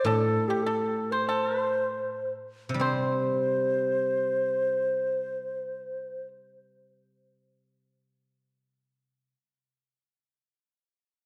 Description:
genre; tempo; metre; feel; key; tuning
chinese traditional, Chinese chamber ensemble; 70-102 BPM; 2/4; straight; unclear; A4 = 441 Hz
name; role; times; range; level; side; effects
bright xiao; melody; 0.0-6.3 s; G4 to C5; -30 LUFS; equal; none
pipa; second line; 0.0-6.3 s; G4 to C5; -34 LUFS; equal; none
guzheng; accompaniment; 0.0-9.3 s; A2 to C4; -34 LUFS; equal; none
room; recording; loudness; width
wet concert hall reverb, RT60 2.1 s; dark, warm production; -28 LUFS; mono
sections
0.0-2.8 A section; 2.8-6.2 B section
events
slowing down 0.1-2.8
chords
none

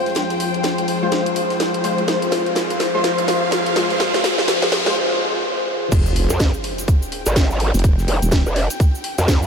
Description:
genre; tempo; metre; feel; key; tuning
bass house; 125 BPM; 4/4; swing 60% on 16ths; F minor; A4 = 440 Hz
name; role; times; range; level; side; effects
deep dark ambient pad; sustained chords; 0.0-9.5 s; F3 to C5; -24 LUFS; left 3 dB; chorus, built-in reverb, sidechain pumping
orchestra-hit-like synth stab; stabs; 0.0-5.0 s; Ab3 to C5; -24 LUFS; left 1 dB; built-in reverb, phaser, cassette tape, sidechain pumping, diffuse ambient delay
riser and sub drop; sound effects; 0.5-7.8 s; none; -27 LUFS; equal; none
dark chamber string section; texture; 0.0-9.5 s; F4 to G5; -28 LUFS; equal; sidechain pumping
deep reggae drum kit; drums; 0.1-9.4 s; hi-hat, snare drum; -37 LUFS; left 2 dB; none
garage drum kit; drums; 0.1-9.4 s; crash cymbal, hi-hat, snare drum; -22 LUFS; equal; none
wobble bass; bass; 5.9-8.4 s; Eb1 to F1; -19 LUFS; equal; chorus, tube saturation, sidechain pumping
electronic kick drum; drums; 5.9-9.4 s; none; -16 LUFS; equal; none
cabasa; percussion; 5.9-9.5 s; none; -32 LUFS; right 1 dB; none
growl bass; bass; 6.3-9.5 s; F1 to F2; -18 LUFS; equal; chorus, overdrive, sidechain pumping
room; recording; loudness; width
wet huge ambient reverb, RT60 7.3 s; dreamy mix soaked in reverb, high-pass filter; -16 LUFS; side -6 dB against mid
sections
0.0-5.9 A section; 5.9-9.5 B section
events
build-up 0.0-5.9; drum fill 0.0-5.0; filter sweep on synth stab 0.0-5.9; filter sweep 0.0-5.9; riser 0.5-5.0; break 5.0-5.9; drop 5.9-9.5; impact 5.9-7.8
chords
0.0 Fm

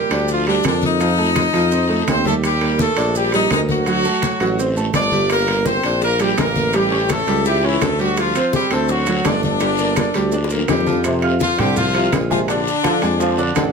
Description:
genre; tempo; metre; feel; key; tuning
latin, salsa; 167 BPM; 4/4; straight; G minor; A4 = 440 Hz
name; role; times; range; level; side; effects
brilliant horn section; melody; 0.0-13.5 s; E3 to Eb5; -19 LUFS; left 2 dB; none
bright concert grand piano; accompaniment; 0.0-13.7 s; D3 to F6; -22 LUFS; right 4 dB; none
mellow tuba; bass; 0.1-13.7 s; G1 to F2; -21 LUFS; equal; none
congas; percussion; 0.1-13.7 s; none; -26 LUFS; left 3 dB; none
guiro; percussion; 0.1-13.7 s; none; -33 LUFS; left 4 dB; none
maracas; percussion; 0.1-13.7 s; none; -35 LUFS; right 6 dB; none
timbales; percussion; 0.1-13.7 s; none; -26 LUFS; right 5 dB; none
bongos; percussion; 5.3-13.7 s; none; -28 LUFS; left 8 dB; none
clear trombone section; second line; 11.1-13.7 s; C3 to F3; -23 LUFS; right 1 dB; none
room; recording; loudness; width
moderate studio reverb, RT60 0.7 s; none; -15 LUFS; side -5 dB against mid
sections
0.0-11.0 A section; 11.0-13.7 B section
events
drum fill 10.3-11.0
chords
0.0 Gm7; 1.0 F7; 2.4 Ebmaj7; 3.9 D7; 5.3 Gmadd9; 6.7 A7; 8.2 D7sus4; 8.9 D7; 9.6 Gm; 11.0 F5; 12.5 Bb7

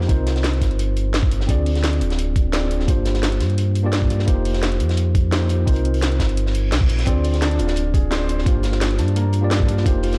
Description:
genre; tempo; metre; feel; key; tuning
liquid drum and bass; 172 BPM; 4/4; straight; C minor; A4 = 441 Hz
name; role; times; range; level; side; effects
tine electric piano; accompaniment; 0.0-10.2 s; Bb3 to D5; -28 LUFS; equal; overdrive, digital delay
sub bass with octave; bass; 0.0-10.2 s; D1 to G2; -22 LUFS; equal; none
crunchy breakbeat drum kit; drums; 0.0-10.2 s; hi-hat, snare drum; -34 LUFS; equal; high-pass filter on hats, high-pass filter on snare, high-pass filter on room
drum and bass drum kit; drums; 0.1-10.2 s; hi-hat, snare drum; -29 LUFS; equal; none
electronic kick drum; drums; 0.1-9.9 s; none; -22 LUFS; equal; none
reverse cymbal; sound effects; 6.5-7.1 s; none; -38 LUFS; equal; none
felt-muted upright piano; arpeggios; 7.1-10.2 s; Bb3 to C5; -30 LUFS; equal; digital delay
room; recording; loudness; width
light reverb, studio reverb; dark, warm production; -19 LUFS; mono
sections
0.0-10.2 A section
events
reverse cymbal 6.5-7.1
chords
0.1 Cm7; 1.5 Dm7b5; 2.9 Gm7; 4.3 F9sus4; 5.7 Cm7; 7.1 Dm7b5; 8.5 Gm7

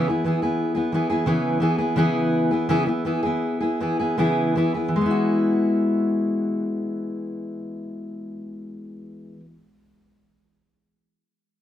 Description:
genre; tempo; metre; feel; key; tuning
pop; 76-89 BPM; 4/4; straight; E major; A4 = 440 Hz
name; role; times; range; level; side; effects
fingerpicked steel-string acoustic guitar; accompaniment; 0.0-9.5 s; C#3 to G#4; -21 LUFS; left 1 dB; none
room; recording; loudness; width
light reverb; close, detailed microphones; -20 LUFS; side -11 dB against mid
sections
0.0-5.0 A section; 5.0-8.1 B section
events
slowing down 0.0-5.0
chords
0.0 C#m7; 5.0 Eadd9

